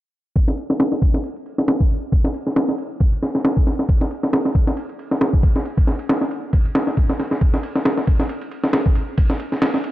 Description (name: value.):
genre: breakbeat.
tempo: 136 BPM.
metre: 4/4.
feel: swing 56% on 16ths.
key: none.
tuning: none.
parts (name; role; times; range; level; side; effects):
breakbeat sampler-style drum kit; drums; 0.4-9.9 s; kick drum, ride cymbal, snare drum; -17 LUFS; equal; low-pass filter on cymbals, small room reverb, low-pass filter on kick, low-pass filter on snare.
room: light reverb.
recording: dark, warm production.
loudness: -17 LUFS.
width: side -16 dB against mid.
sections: 0.4-9.9 A section.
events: filter sweep on drum 0.4-9.9.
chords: none.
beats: | 0.36 0.81 1.25 1.69 | 2.13 2.57 3.01 3.45 | 3.89 4.33 4.78 5.22 | 5.66 6.10 6.54 6.98 | 7.42 7.86 8.30 8.75 | 9.19 9.63.